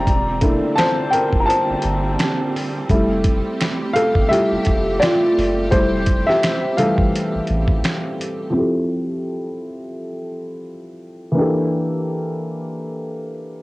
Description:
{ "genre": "lo-fi hip hop", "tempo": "85 BPM", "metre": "4/4", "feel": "swing 58% on 16ths", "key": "F major", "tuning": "A4 = 439 Hz", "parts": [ { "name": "dark upright piano", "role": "accompaniment", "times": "0.0-13.6 s", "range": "E3 to Bb5", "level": "-19 LUFS", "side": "equal", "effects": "cassette tape, low-pass filter" }, { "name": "clear symphonic string section", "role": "sustained chords", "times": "0.0-8.5 s", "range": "Bb2 to G4", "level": "-27 LUFS", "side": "right 2 dB", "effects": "cassette tape" }, { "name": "soft dub sub bass", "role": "bass", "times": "0.0-7.8 s", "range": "E1 to A1", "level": "-24 LUFS", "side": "equal", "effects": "none" }, { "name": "dusty soul sampler-style drum kit", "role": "drums", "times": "0.1-8.4 s", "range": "finger snaps, hi-hat, kick drum, snare drum", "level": "-20 LUFS", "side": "equal", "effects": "none" }, { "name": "finger snap", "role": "percussion", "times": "0.8-8.0 s", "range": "none", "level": "-33 LUFS", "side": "right 6 dB", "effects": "none" } ], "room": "light reverb", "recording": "home recording on cassette", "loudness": "-16 LUFS", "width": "side -20 dB against mid", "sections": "0.0-8.5 A section; 8.5-13.6 B section", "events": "upright piano solo 0.0-8.5; filter sweep on upright piano 8.5-13.6", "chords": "0.1 C13/E; 2.9 Fmaj9; 11.4 Gm69/E" }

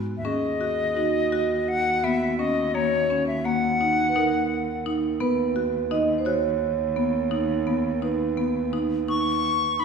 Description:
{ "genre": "contemporary instrumental, chamber music in an uneven meter", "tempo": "169 BPM (eighths)", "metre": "7/8", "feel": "straight", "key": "unclear", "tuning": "A4 = 440 Hz", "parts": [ { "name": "marimba with medium hard mallets", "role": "arpeggios", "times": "0.0-9.8 s", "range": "A#3 to F#4", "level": "-27 LUFS", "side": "equal", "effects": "none" }, { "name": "warm cello", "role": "bass", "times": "0.0-9.8 s", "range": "D#2 to G#2", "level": "-31 LUFS", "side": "right 2 dB", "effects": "none" }, { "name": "bright reedy wooden flute", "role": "melody", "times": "0.2-4.9, 9.1-9.8 s", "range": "C#5 to C#6", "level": "-24 LUFS", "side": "left 4 dB", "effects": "none" }, { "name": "vibraphone with soft mallets", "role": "second line", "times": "0.2-9.8 s", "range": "F#4 to D#5", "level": "-28 LUFS", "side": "right 6 dB", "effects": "none" } ], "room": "wet recital hall reverb, RT60 1.7 s", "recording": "heard from further back in the room", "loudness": "-22 LUFS", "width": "side -6 dB against mid", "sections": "0.2-9.8 A section", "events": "none", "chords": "0.2 D#m7; 5.2 Badd9/D#" }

